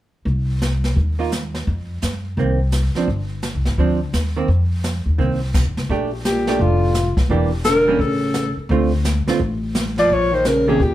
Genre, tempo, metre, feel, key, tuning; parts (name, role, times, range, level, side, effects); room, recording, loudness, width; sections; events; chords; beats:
jazz, small-group swing and bop; 171 BPM; 4/4; swing 64% on 8ths; Bb major; A4 = 440 Hz
upright bass; bass; 0.3-10.9 s; E1 to Gb2; -20 LUFS; equal
jazz brush drum kit; drums; 0.3-10.9 s; brushed snare drum, crash cymbal, hi-hat, kick drum, snare drum; -24 LUFS; equal
hollow-body jazz guitar; accompaniment; 1.2-10.8 s; D3 to G4; -21 LUFS; right 4 dB
warm alto saxophone; melody; 6.3-10.9 s; F4 to D5; -18 LUFS; left 2 dB; plate reverb
mellow baritone saxophone; second line; 6.3-10.9 s; A2 to F3; -22 LUFS; right 1 dB
moderate studio reverb, RT60 0.5 s; heard from further back in the room; -17 LUFS; side -14 dB against mid
0.3-5.9 A section; 5.9-10.9 B section
0.3 Cm; 1.7 F7sus4; 3.1 G7sus4; 4.5 F7sus4; 5.9 Bb6; 7.3 Em7b5; 8.0 A; 8.7 Dm7; 10.1 Bbm
| 0.27 0.62 0.97 1.32 | 1.68 2.03 2.38 2.73 | 3.08 3.44 3.79 4.14 | 4.49 4.84 5.20 5.55 | 5.90 6.25 6.60 6.95 | 7.30 7.65 8.00 8.35 | 8.70 9.05 9.40 9.76 | 10.11 10.46 10.81